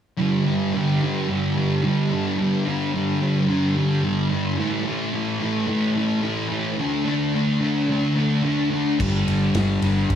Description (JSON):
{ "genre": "rock, shoegaze and dream pop", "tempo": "109 BPM", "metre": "4/4", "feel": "straight", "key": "unclear", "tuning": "A4 = 438 Hz", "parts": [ { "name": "thick fuzz guitar", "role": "riff", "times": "0.2-10.2 s", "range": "G2 to D4", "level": "-20 LUFS", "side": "equal", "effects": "distortion, lush chorus" }, { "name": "vintage muted picked electric bass", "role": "bass", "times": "9.0-10.2 s", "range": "G1", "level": "-23 LUFS", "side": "equal", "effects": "none" }, { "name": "loose indie drum kit", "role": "drums", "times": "9.0-10.2 s", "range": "crash cymbal, kick drum, ride cymbal, snare drum", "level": "-27 LUFS", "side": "equal", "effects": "none" } ], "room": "wet concert hall reverb, RT60 2.2 s", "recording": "none", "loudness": "-20 LUFS", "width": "side -9 dB against mid", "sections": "0.2-9.0 A section; 9.0-10.2 B section", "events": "none", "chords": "0.2 G5; 4.6 A5; 6.8 D5; 9.0 G5", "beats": "| 0.18 0.74 1.29 1.84 | 2.39 2.94 3.49 4.04 | 4.60 5.15 5.70 6.25 | 6.80 7.35 7.90 8.45 | 9.00 9.55 10.10" }